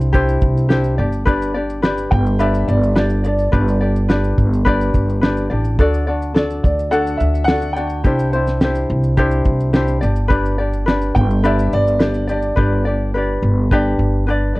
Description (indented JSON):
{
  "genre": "acoustic pop",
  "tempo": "106 BPM",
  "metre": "4/4",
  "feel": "straight",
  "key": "G major",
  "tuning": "A4 = 440 Hz",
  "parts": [
    { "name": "ukulele", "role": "accompaniment", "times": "0.0-14.6 s", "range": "D4 to D5", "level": "-20 LUFS", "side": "left 2 dB", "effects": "plate reverb" },
    { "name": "upright bass", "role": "bass", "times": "0.0-14.6 s", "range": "G1 to D2", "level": "-18 LUFS", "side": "equal", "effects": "none" },
    { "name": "cloth-damped thuddy drum kit", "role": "drums", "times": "0.0-13.8 s", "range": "kick drum, shaker, snare drum", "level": "-17 LUFS", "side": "equal", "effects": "none" },
    { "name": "dark upright piano", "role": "melody", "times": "2.1-12.8 s", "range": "D5 to G5", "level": "-22 LUFS", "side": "equal", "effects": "plate reverb, digital delay" }
  ],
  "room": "light reverb",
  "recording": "worn, warbling old tape, cassette tape, warbly pitch drift",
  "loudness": "-14 LUFS",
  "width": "side -21 dB against mid",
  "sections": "0.0-14.6 A section",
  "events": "drum fill 12.6-14.6",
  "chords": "0.0 Cadd9; 1.0 G; 5.8 D; 8.1 Cadd9; 10.0 G"
}